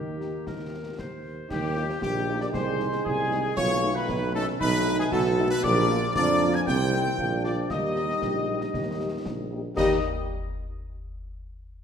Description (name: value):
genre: military-style march for wind band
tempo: 116 BPM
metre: 2/4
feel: straight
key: Eb major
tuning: A4 = 440 Hz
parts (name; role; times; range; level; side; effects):
- clear trumpet section; melody; 0.0-10.0 s; G4 to Ab5; -33 LUFS; left 1 dB; none
- mellow euphonium; second line; 0.0-9.5 s; Eb3 to Ab4; -31 LUFS; right 2 dB; none
- warm woodwind section; second line; 0.0-10.0 s; G4 to Ab5; -33 LUFS; left 3 dB; none
- dark French horn section; accompaniment; 0.0-10.0 s; G3 to G4; -33 LUFS; left 4 dB; none
- mellow tuba; bass; 0.0-10.0 s; Bb1 to F2; -29 LUFS; right 2 dB; none
- concert snare drum, concert bass drum and clash cymbals; drums; 0.2-10.1 s; none; -36 LUFS; left 1 dB; none
- mellow wooden piccolo; second line; 1.5-10.1 s; G5 to Ab6; -32 LUFS; left 4 dB; none
- warm trombone section; sustained chords; 1.5-10.0 s; Eb3 to Eb4; -34 LUFS; right 2 dB; none
room: wet scoring stage reverb, RT60 1.6 s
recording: none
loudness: -23 LUFS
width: side -7 dB against mid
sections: 0.0-1.5 A section; 1.5-9.8 B section; 9.8-10.8 C section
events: none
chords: 0.0 Eb; 2.5 Ab/C; 3.6 B7; 5.6 Bb; 6.7 Cm; 7.2 Bb; 7.7 Eb